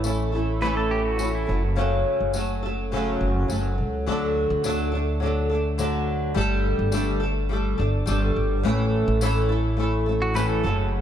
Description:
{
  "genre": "acoustic pop",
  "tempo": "105 BPM",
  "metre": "4/4",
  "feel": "straight",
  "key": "D major",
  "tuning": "A4 = 440 Hz",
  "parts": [
    { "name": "flamenco guitar", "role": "accompaniment", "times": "0.0-11.0 s", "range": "F#2 to A4", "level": "-24 LUFS", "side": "equal", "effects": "double-tracked left and right" },
    { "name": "upright bass", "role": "bass", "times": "0.0-11.0 s", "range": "F#1 to D2", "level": "-25 LUFS", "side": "equal", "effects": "none" },
    { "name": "tambourine", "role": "percussion", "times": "0.0-10.5 s", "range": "none", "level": "-39 LUFS", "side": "left 5 dB", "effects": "none" },
    { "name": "pedal steel guitar", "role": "second line", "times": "0.6-1.6, 10.2-10.8 s", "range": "E4 to B4", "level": "-29 LUFS", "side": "right 2 dB", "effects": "none" }
  ],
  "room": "light reverb, studio ambience",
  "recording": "dark, warm production",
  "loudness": "-21 LUFS",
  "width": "side -10 dB against mid",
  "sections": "0.0-4.1 A section; 4.1-11.0 B section",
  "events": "none",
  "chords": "0.0 A; 1.5 F#m; 4.1 D; 6.4 Gsus2; 8.6 A"
}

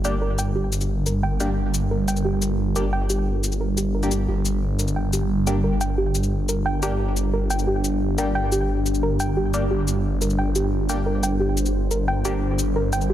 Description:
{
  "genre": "dark technical drum and bass",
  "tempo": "177 BPM",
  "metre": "4/4",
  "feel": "straight",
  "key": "G minor",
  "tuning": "A4 = 437 Hz",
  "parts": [
    { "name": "deep dark ambient pad", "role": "sustained chords", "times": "0.0-13.1 s", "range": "G3 to C5", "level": "-27 LUFS", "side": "right 1 dB", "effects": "chorus, built-in reverb" },
    { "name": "band-passed chord stab", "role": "stabs", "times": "0.0-12.3 s", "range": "Bb3 to G4", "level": "-30 LUFS", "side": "left 1 dB", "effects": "phaser, digital delay" },
    { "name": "phased detuned saw bass", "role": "bass", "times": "0.0-13.1 s", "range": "G1", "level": "-23 LUFS", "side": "equal", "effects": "phaser" },
    { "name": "cabasa", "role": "drums", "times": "0.0-13.1 s", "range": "none", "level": "-29 LUFS", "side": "left 4 dB", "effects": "none" },
    { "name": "soft round pluck", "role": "arpeggios", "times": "0.2-13.1 s", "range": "G4 to G5", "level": "-28 LUFS", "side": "right 1 dB", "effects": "chorus, digital delay" }
  ],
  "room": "light reverb",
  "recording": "none",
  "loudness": "-20 LUFS",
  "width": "side -12 dB against mid",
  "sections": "0.0-13.1 A section",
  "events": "filter sweep on ambient pad 0.0-13.1",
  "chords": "0.0 Gm"
}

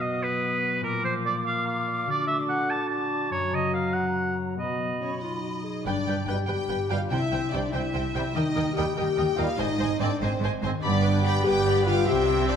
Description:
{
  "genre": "cinematic, heroic adventure film score",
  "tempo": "96 BPM (dotted quarters)",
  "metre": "6/8",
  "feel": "straight",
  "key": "unclear",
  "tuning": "A4 = 439 Hz",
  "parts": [
    { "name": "clear oboe", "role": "second line", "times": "0.0-5.2 s", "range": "Bb4 to A5", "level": "-28 LUFS", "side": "right 2 dB", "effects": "none" },
    { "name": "dark clarinet", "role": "second line", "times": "0.0-5.8 s", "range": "F4 to Ab4", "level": "-36 LUFS", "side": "right 4 dB", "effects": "none" },
    { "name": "silver concert flute", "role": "second line", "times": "0.0-5.6 s", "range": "Bb5 to D#6", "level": "-34 LUFS", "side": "right 1 dB", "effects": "none" },
    { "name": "dark French horn section", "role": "sustained chords", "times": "0.0-12.6 s", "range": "Gb3 to G4", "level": "-29 LUFS", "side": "left 3 dB", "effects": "none" },
    { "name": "concert harp", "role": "arpeggios", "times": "0.0-12.6 s", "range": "Gb2 to D6", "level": "-33 LUFS", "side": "left 7 dB", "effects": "none" },
    { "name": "warm symphonic violin section", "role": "melody", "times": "5.0-12.6 s", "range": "C5 to G5", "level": "-34 LUFS", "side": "left 2 dB", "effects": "none" },
    { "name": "warm symphonic cello section", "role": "bass", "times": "5.8-12.6 s", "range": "G2 to Eb3", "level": "-31 LUFS", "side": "right 3 dB", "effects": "none" },
    { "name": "rich symphonic violin section", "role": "second line", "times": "5.9-12.6 s", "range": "Eb5 to D6", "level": "-34 LUFS", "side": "left 1 dB", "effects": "none" },
    { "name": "warm symphonic viola section", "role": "accompaniment", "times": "5.9-12.6 s", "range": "G4 to G5", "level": "-34 LUFS", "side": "right 1 dB", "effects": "none" },
    { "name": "dark symphonic double bass section", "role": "bass", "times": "5.9-12.6 s", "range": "G1 to Eb2", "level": "-30 LUFS", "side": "right 4 dB", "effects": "none" },
    { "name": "warm trombone section", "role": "sustained chords", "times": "6.3-12.6 s", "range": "B2 to C4", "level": "-34 LUFS", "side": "right 5 dB", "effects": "none" }
  ],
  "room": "wet scoring stage reverb, RT60 1.6 s",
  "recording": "none",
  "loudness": "-23 LUFS",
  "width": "side -8 dB against mid",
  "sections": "0.0-5.9 A section; 5.9-12.6 B section",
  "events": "none",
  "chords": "0.0 B; 0.8 Bb; 2.1 D; 3.3 Gb; 4.6 B; 5.9 G; 7.1 C; 8.4 Eb; 9.6 Ab; 10.8 G"
}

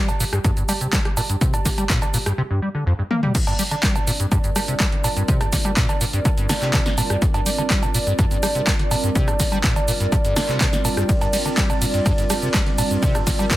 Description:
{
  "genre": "acid house",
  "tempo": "124 BPM",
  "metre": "4/4",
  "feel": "straight",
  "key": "G minor pentatonic",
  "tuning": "A4 = 441 Hz",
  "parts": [
    { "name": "dark analog pad", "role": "sustained chords", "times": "0.0-13.6 s", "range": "G4 to D5", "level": "-29 LUFS", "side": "equal", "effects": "chorus, vintage 12-bit sampler grit, sidechain pumping" },
    { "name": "liquid acid bass", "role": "riff", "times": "0.0-13.6 s", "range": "F2 to Bb3", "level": "-23 LUFS", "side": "equal", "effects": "chorus, tube saturation, sidechain pumping" },
    { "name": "punchy analog drum machine", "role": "drums", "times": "0.1-13.6 s", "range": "cabasa, cowbell, crash cymbal, handclaps, hi-hat, ride cymbal, rim click, snare drum, toms", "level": "-24 LUFS", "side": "right 1 dB", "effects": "overdrive" },
    { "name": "electronic kick drum", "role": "drums", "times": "0.4-13.6 s", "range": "none", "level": "-21 LUFS", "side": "equal", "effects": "overdrive" },
    { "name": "warbly tape-like pad", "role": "texture", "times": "4.1-13.6 s", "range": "G3 to D5", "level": "-29 LUFS", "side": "right 1 dB", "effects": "chorus, built-in reverb, phaser, sidechain pumping" }
  ],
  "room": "light reverb",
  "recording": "dense, heavily limited modern master",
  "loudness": "-18 LUFS",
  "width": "side -15 dB against mid",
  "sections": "0.0-3.3 A section; 3.3-13.6 B section",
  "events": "drum fill 3.1; drop 3.3-13.6",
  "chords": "0.0 N.C.; 3.3 Gm"
}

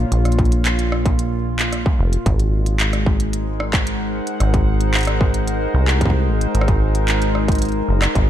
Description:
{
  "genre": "IDM",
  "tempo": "112 BPM",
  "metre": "4/4",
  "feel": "straight",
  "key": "unclear",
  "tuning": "A4 = 440 Hz",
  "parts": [
    { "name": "warbly tape-like pad", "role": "sustained chords", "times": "0.0-8.3 s", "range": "Bb2 to Gb5", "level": "-23 LUFS", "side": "left 1 dB", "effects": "chorus, built-in reverb, vintage 12-bit sampler grit" },
    { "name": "deep acid bass", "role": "bass", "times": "0.0-8.3 s", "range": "F1 to C2", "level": "-18 LUFS", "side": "equal", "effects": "none" },
    { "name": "industrial drum kit", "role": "drums", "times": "0.1-8.3 s", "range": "handclaps, hi-hat, rim click", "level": "-24 LUFS", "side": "equal", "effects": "none" },
    { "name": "electronic kick drum", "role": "drums", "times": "0.4-8.3 s", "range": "none", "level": "-19 LUFS", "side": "equal", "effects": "distortion" }
  ],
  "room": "light reverb",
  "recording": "dark, warm production",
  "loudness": "-16 LUFS",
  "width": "side -11 dB against mid",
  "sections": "0.0-8.3 A section",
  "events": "none",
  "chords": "0.0 Bbm; 2.3 Ab7"
}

